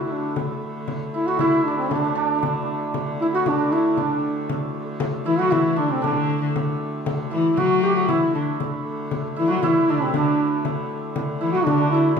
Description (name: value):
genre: medieval dance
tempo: 117 BPM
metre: 2/4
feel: straight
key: D mixolydian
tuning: A4 = 440 Hz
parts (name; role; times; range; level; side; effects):
- hammered dulcimer; second line; 0.0-12.2 s; C4 to G4; -25 LUFS; right 3 dB; none
- dark hurdy-gurdy; drone; 0.0-12.2 s; D3 to A3; -32 LUFS; equal; none
- dark duduk; melody; 0.1-12.2 s; C4 to G4; -21 LUFS; equal; none
- frame drum; percussion; 0.4-12.2 s; none; -29 LUFS; left 3 dB; none
- warm viola da gamba; second line; 5.2-12.2 s; C3 to F#3; -25 LUFS; left 3 dB; none
room: wet large studio reverb, RT60 0.9 s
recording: band playing live in one room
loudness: -20 LUFS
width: side -6 dB against mid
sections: 0.0-4.5 A section; 4.5-12.2 A section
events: none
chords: none